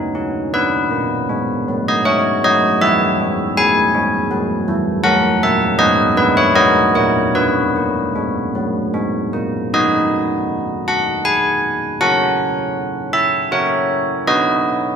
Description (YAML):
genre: classical, tune for church bells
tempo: 79 BPM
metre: 3/4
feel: straight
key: B major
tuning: A4 = 440 Hz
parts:
  - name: carillon bells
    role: solo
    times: 0.0-15.0 s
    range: E3 to G#5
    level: -14 LUFS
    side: equal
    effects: none
room: moderate concert hall reverb, RT60 2.0 s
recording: none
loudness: -14 LUFS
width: side -7 dB against mid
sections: 0.0-9.7 A section; 9.7-15.0 B section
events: none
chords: 0.0 F# (rootless); 0.5 B5; 2.8 E; 5.0 F#7; 5.8 G#m; 6.6 F#; 7.3 B5; 9.7 B/D#; 12.0 F#/C#; 14.3 B